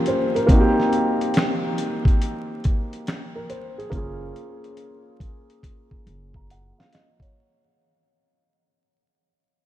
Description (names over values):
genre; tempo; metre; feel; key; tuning
lo-fi hip hop; 70 BPM; 4/4; swing 65% on 16ths; unclear; A4 = 441 Hz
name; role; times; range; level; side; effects
felt-muted upright piano; accompaniment; 0.0-7.6 s; Bb3 to Bb5; -23 LUFS; equal; cassette tape, low-pass filter
dusty soul sampler-style drum kit; drums; 0.1-7.4 s; finger snaps, hi-hat, kick drum, snare drum; -22 LUFS; equal; none
upright bass; bass; 3.9-6.7 s; Gb1; -44 LUFS; equal; none
room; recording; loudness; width
wet cathedral reverb, RT60 6.5 s; dreamy mix soaked in reverb, vinyl crackle; -19 LUFS; side -13 dB against mid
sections
0.0-7.3 A section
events
break 0.0-3.9; fade-out 0.0-7.3; filter sweep on felt piano 0.0-7.3; drum fill 5.6-7.3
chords
0.5 Bbsus4; 3.9 Gbmaj7